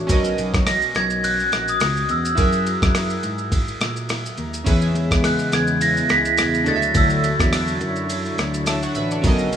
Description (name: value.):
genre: indie pop, bedroom pop.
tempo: 105 BPM.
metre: 4/4.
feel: swing 55% on 16ths.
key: unclear.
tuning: A4 = 442 Hz.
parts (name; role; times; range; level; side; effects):
chorused retro synth keys; accompaniment; 0.0-9.6 s; B3 to A5; -27 LUFS; right 3 dB; none.
picked steel-string acoustic guitar; accompaniment; 0.0-9.6 s; B2 to A#4; -28 LUFS; left 3 dB; wide subtle chorus, vibrato effect.
tine electric piano; bass; 0.0-9.6 s; A1 to A#2; -25 LUFS; equal; overdrive.
dusty soul sampler-style drum kit; drums; 0.1-9.6 s; kick drum, ride cymbal, rim click, shaker; -23 LUFS; equal; overdrive.
glockenspiel with rubber mallets; melody; 0.7-8.1 s; D#6 to B6; -22 LUFS; right 1 dB; wide subtle chorus, slapback echo.
warm analog pad; sustained chords; 4.7-9.6 s; B2 to C#5; -26 LUFS; left 1 dB; chorus.
room: light reverb, digital ambience.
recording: rough home demo mix, small room ambience.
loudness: -17 LUFS.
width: side -8 dB against mid.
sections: 0.0-9.6 A section.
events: none.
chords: 0.1 Bmaj9; 2.4 F#9; 4.7 E6; 6.7 Dmaj9.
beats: | 0.09 0.67 1.24 1.81 | 2.38 2.95 3.52 4.09 | 4.67 5.24 5.81 6.38 | 6.95 7.52 8.09 8.66 | 9.24.